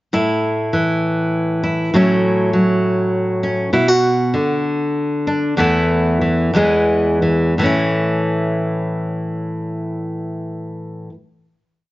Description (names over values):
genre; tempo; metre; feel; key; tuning
acoustic folk duo or small band; 56-67 BPM (dotted quarters); 6/8; straight; A major; A4 = 440 Hz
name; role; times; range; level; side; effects
nylon-string guitar; solo; 0.1-11.2 s; E2 to G#4; -15 LUFS; equal; none
room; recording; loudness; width
light reverb; nothing above 7.6 kHz; -15 LUFS; side -17 dB against mid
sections
0.1-7.6 interlude; 7.6-11.9 final chord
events
slowing down 3.7-7.6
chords
0.1 A5; 1.9 F#m7/A; 3.7 Bm; 5.6 Esus4; 6.5 E; 7.6 A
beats
| 0.12 1.02 | 1.92 2.82 | 3.72 4.63 | 5.57 6.54 | 7.57 8.64 | 9.72 10.79